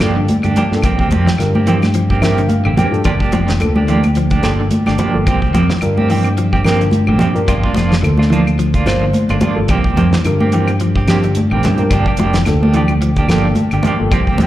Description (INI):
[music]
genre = afrobeat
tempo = 108 BPM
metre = 4/4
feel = swing 56% on 16ths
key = G dorian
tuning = A4 = 440 Hz
[part]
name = mellow reed electric piano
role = accompaniment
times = 0.0-14.1 s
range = Bb3 to G5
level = -22 LUFS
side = left 2 dB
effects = fast tremolo
[part]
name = clean electric guitar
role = stabs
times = 0.0-14.5 s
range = F3 to G4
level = -19 LUFS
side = right 4 dB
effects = tremolo, tape echo, slapback echo
[part]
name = fingered electric bass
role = bass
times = 0.0-14.5 s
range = F1 to G2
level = -16 LUFS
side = equal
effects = none
[part]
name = damped 70s drum kit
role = drums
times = 0.0-14.5 s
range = hi-hat, kick drum, snare drum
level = -19 LUFS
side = equal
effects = none
[part]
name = claves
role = percussion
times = 0.0-14.3 s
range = none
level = -28 LUFS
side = left 3 dB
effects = slapback echo
[part]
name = electric guitar at the edge of break-up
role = arpeggios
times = 0.2-14.5 s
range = D3 to Bb3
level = -22 LUFS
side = left 4 dB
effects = wide subtle chorus
[part]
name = congas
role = percussion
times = 0.3-14.5 s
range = none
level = -18 LUFS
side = right 1 dB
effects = none
[sound]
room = light reverb, studio reverb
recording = live gig heard through the venue's PA, club reverb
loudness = -12 LUFS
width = side -14 dB against mid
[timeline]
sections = 0.0-14.5 A section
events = reed electric piano fill 1.9-3.0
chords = 0.0 Gm7; 0.8 C7sus4; 3.0 Gm7; 5.3 C7sus4; 7.5 Gm7; 9.7 C7sus4; 11.9 Gm7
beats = 0.28 | 0.83 1.39 1.94 2.49 | 3.05 3.60 4.15 4.71 | 5.26 5.82 6.37 6.92 | 7.48 8.03 8.58 9.14 | 9.69 10.24 10.80 11.35 | 11.90 12.46 13.01 13.56 | 14.11